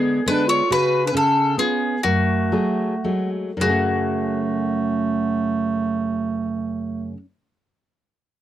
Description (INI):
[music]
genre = italian folk, Italian serenade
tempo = 100-141 BPM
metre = 3/4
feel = straight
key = F# minor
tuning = A4 = 444 Hz
[part]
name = bowl-back mandolin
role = melody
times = 0.0-7.2 s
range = F#4 to C#5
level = -22 LUFS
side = left 3 dB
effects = none
[part]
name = warm clarinet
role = second line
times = 0.0-7.2 s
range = A3 to F#4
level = -23 LUFS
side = right 5 dB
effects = none
[part]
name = nylon-string guitar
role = accompaniment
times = 0.0-7.2 s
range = F#2 to G#4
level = -24 LUFS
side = left 2 dB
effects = none
[sound]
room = light reverb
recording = dry, close 1970s-style studio recording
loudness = -19 LUFS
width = side -12 dB against mid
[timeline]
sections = 0.0-3.6 A section; 3.6-7.1 B section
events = slowing down 0.7-3.6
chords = 0.0 G#dim; 0.7 N.C.; 1.1 C#7; 2.0 F#madd9